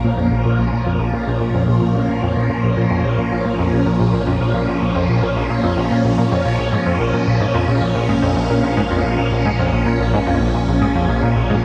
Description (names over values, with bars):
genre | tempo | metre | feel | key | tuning
ambient, sequencer-driven space music | 110 BPM | 4/4 | straight | Bb minor | A4 = 443 Hz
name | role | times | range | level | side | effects
phased string machine | sustained chords | 0.0-11.6 s | Bb2 to Bb4 | -21 LUFS | equal | ensemble chorus, phaser
plucky analog bass | riff | 0.0-11.6 s | Bb1 to Bb2 | -20 LUFS | equal | ensemble chorus, tape echo
analog drone | bass | 0.0-11.6 s | Bb1 | -28 LUFS | equal | chorus
room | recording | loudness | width
moderate plate reverb, RT60 3.0 s | dreamy mix soaked in reverb | -17 LUFS | mono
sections
0.0-11.6 A section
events
none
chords
0.0 Bbm